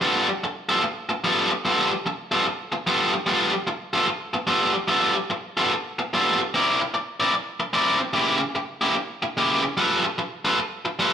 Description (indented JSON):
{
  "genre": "blues",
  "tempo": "148 BPM",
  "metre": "4/4",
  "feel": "swing 64% on 8ths",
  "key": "G mixolydian",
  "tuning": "A4 = 440 Hz",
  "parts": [
    { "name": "overdriven electric guitar", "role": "solo", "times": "0.0-11.1 s", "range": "C#3 to D5", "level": "-20 LUFS", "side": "equal", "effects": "none" }
  ],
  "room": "moderate stone room reverb, RT60 1.3 s",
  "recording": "rough rehearsal-room recording",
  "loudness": "-20 LUFS",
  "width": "side -8 dB against mid",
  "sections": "0.0-11.1 A section",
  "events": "none",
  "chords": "0.0 G9; 6.5 C9; 8.1 C#dim7; 9.8 G9"
}